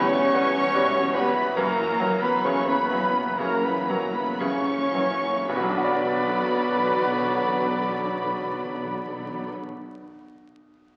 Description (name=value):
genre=classical, romantic movement for piano and orchestra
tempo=53-75 BPM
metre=4/4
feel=rubato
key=B minor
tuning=A4 = 440 Hz
part: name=bright baby grand piano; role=melody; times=0.0-11.0 s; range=B1 to D5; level=-31 LUFS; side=equal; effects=none
part: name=warm studio violin section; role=melody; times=0.0-9.5 s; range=A#5 to C#6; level=-35 LUFS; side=equal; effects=none
part: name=bright clarinet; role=second line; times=0.0-9.5 s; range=A#4 to C#5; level=-33 LUFS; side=equal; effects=none
part: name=bright oboe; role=second line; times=0.0-9.5 s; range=B4 to D5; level=-38 LUFS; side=equal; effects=none
part: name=bright silver concert flute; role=second line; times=0.0-9.5 s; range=A#5 to C#6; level=-33 LUFS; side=equal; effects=none
part: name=warm chamber violin section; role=second line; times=0.0-9.5 s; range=A#3 to G4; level=-38 LUFS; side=equal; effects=none
part: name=rich studio viola section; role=accompaniment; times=0.0-9.5 s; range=D3 to B3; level=-37 LUFS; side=equal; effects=none
part: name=warm bassoon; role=accompaniment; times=0.0-9.5 s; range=E3 to G3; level=-36 LUFS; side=equal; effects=none
part: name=mellow French horn section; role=sustained chords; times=0.0-9.5 s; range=A#3 to C#4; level=-36 LUFS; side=equal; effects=none
part: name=dark trumpet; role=stabs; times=0.0-9.5 s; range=A#4 to C#5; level=-32 LUFS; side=equal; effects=none
part: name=clear symphonic double bass section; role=bass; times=0.0-9.5 s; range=B1 to F#2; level=-48 LUFS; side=equal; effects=none
part: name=dark tuba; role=bass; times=0.0-9.5 s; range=E1 to B1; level=-40 LUFS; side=equal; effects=none
part: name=rich chamber cello section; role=bass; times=0.0-9.5 s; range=A#3 to C#4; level=-36 LUFS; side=equal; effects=none
part: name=timpani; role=percussion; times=1.6-9.5 s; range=F#2 to B2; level=-42 LUFS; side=equal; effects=none
room=wet scoring stage reverb, RT60 1.6 s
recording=very old 78 rpm record, vinyl crackle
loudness=-24 LUFS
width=mono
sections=0.0-5.5 A section; 5.5-9.7 B section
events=slowing down 0.0-5.5; timpani fill 1.6-5.5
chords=0.0 C#m7b5/E; 1.6 F#7; 5.5 Bm